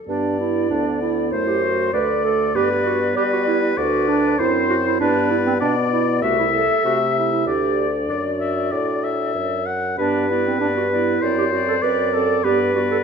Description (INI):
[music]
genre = quick classical-period movement for wind quintet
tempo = 97 BPM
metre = 4/4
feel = straight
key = G major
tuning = A4 = 440 Hz
[part]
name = silver concert flute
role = melody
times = 0.1-13.0 s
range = B4 to E5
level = -26 LUFS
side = left 9 dB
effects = none
[part]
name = dark French horn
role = accompaniment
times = 0.1-13.0 s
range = A3 to D4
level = -28 LUFS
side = left 1 dB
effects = none
[part]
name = warm clarinet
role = accompaniment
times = 0.1-13.0 s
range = C4 to B4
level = -22 LUFS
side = right 7 dB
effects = none
[part]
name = mellow bassoon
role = bass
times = 0.1-13.0 s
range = C2 to G3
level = -23 LUFS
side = right 2 dB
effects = none
[part]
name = clear oboe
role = second line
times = 1.3-13.0 s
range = B4 to F#5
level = -23 LUFS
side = left 5 dB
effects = none
[sound]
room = wet recital hall reverb, RT60 1.5 s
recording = minimal, uncompressed stereo recording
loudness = -17 LUFS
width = side -6 dB against mid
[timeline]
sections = 0.1-13.0 A section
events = none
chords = 0.1 G; 1.3 D7/F#; 2.6 G; 3.8 D7; 5.0 G; 6.2 Am/C; 7.5 D; 10.0 G; 11.2 D7/F#; 12.4 G